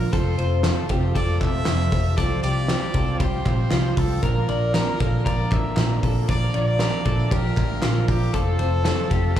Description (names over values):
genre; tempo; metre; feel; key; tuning
jangly indie pop; 117 BPM; 4/4; straight; unclear; A4 = 439 Hz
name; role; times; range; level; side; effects
clear trumpet; melody; 0.0-9.4 s; G4 to E5; -30 LUFS; equal; slapback echo, analog delay
fingerpicked steel-string acoustic guitar; accompaniment; 0.0-9.4 s; Bb2 to Bb4; -32 LUFS; right 5 dB; slapback echo
overdriven combo organ; accompaniment; 0.0-9.4 s; C4 to Bb4; -33 LUFS; right 3 dB; slapback echo
lush unison pad; sustained chords; 0.0-9.4 s; C3 to E5; -34 LUFS; right 1 dB; none
electric guitar through a small old amp; arpeggios; 0.0-9.4 s; F4 to D5; -29 LUFS; left 4 dB; tremolo, slapback echo, analog delay
vintage muted picked electric bass; bass; 0.0-9.4 s; E1 to C2; -22 LUFS; equal; none
loose indie drum kit; drums; 0.1-9.4 s; hi-hat, kick drum, ride cymbal, snare drum; -25 LUFS; equal; none
group handclap; percussion; 0.6-9.0 s; none; -38 LUFS; right 3 dB; none
room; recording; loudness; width
small room ambience; live gig heard through the venue's PA, club reverb; -19 LUFS; side -11 dB against mid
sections
0.0-9.4 A section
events
none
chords
0.1 F; 2.2 Csus4; 4.2 Bb; 8.3 F